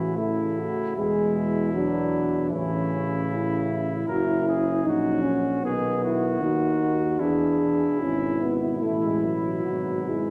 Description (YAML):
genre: classical, hymn-like piece for brass band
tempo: 67-79 BPM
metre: 4/4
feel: rubato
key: unclear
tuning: A4 = 440 Hz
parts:
  - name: warm cornet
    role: melody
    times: 0.0-10.3 s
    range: E4 to A#4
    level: -36 LUFS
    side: equal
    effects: none
  - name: dark French horn section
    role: second line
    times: 0.0-10.3 s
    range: C#4 to G#4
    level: -30 LUFS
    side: equal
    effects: none
  - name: mellow euphonium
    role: accompaniment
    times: 0.0-10.3 s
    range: E3 to E4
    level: -28 LUFS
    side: equal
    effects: none
  - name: warm trombone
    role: accompaniment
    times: 0.0-10.3 s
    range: B2 to F#3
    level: -37 LUFS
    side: equal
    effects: none
  - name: mellow tuba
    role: bass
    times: 0.0-10.3 s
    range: F#1 to E2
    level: -32 LUFS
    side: equal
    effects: none
room: moderate scoring stage reverb, RT60 1.7 s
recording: none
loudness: -25 LUFS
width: mono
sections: 0.0-10.3 A section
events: none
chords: 0.0 A; 1.0 E7; 2.5 A; 4.1 F#7; 5.6 B; 7.2 E7; 8.8 A5